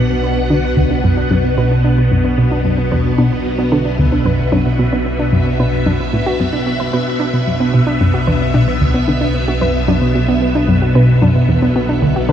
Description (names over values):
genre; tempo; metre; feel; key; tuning
ambient; 112 BPM; 4/4; straight; B minor; A4 = 443 Hz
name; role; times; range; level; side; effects
phased string machine; sustained chords; 0.0-12.3 s; B2 to F#5; -17 LUFS; equal; ensemble chorus, phaser
analog pluck; riff; 0.0-12.3 s; D2 to D3; -16 LUFS; equal; chorus, tape echo
fat analog bass; bass; 0.0-12.3 s; B1; -20 LUFS; equal; none
soft round pluck; arpeggios; 0.1-12.3 s; B2 to B4; -20 LUFS; right 1 dB; chorus, auto-pan, tape echo
room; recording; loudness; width
moderate huge ambient reverb, RT60 7.3 s; dark, warm production; -12 LUFS; side -10 dB against mid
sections
0.0-12.3 A section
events
filter sweep on synth arpeggio sound 0.0-12.3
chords
0.0 Bm